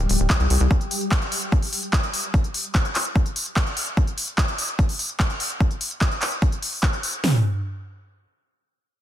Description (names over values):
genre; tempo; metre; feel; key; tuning
psychedelic trance; 147 BPM; 4/4; straight; unclear; A4 = 440 Hz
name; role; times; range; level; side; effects
swarming drone; sustained chords; 0.0-0.7 s; G3 to G4; -30 LUFS; left 4 dB; built-in reverb, sidechain pumping
tight sequencer bass; bass; 0.0-0.7 s; D1 to C2; -19 LUFS; equal; none
techno drum kit; drums; 0.1-7.2 s; handclaps, hi-hat; -25 LUFS; equal; none
techno drum kit; drums; 0.3-7.3 s; hi-hat, kick drum, snare drum, toms; -20 LUFS; equal; none
room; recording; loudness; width
light reverb; dense, heavily limited modern master; -20 LUFS; side -12 dB against mid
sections
0.0-7.2 A section; 7.2-9.0 B section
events
none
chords
0.0 G5; 7.2 N.C.